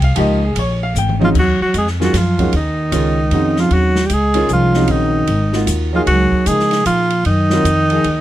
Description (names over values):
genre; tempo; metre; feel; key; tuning
modal jazz; 152 BPM; 3/4; swing 64% on 8ths; Eb dorian; A4 = 440 Hz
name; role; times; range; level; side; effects
clear concert grand piano; accompaniment; 0.0-8.0 s; Db3 to G5; -20 LUFS; equal; none
upright bass; bass; 0.0-8.2 s; Ab1 to Db3; -18 LUFS; equal; none
open jazz drum kit; drums; 0.0-8.2 s; crash cymbal, hi-hat, kick drum, ride cymbal, snare drum, toms; -24 LUFS; equal; none
breathy alto saxophone; melody; 1.2-8.2 s; Eb4 to Ab4; -17 LUFS; equal; none
dark bass clarinet; second line; 1.2-8.2 s; Eb3 to Ab3; -20 LUFS; right 3 dB; none
room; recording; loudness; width
little or no reverb; close, detailed microphones; -13 LUFS; side -13 dB against mid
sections
0.0-1.3 A section; 1.3-8.2 B section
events
drum fill 0.9-1.3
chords
0.0 Dbadd9; 1.3 Ebm11; 6.1 Gbadd9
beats
| 0.16 0.56 0.95 | 1.34 1.74 2.13 | 2.52 2.92 3.31 | 3.71 4.10 4.50 | 4.89 5.29 5.68 | 6.08 6.47 6.87 | 7.26 7.66 8.05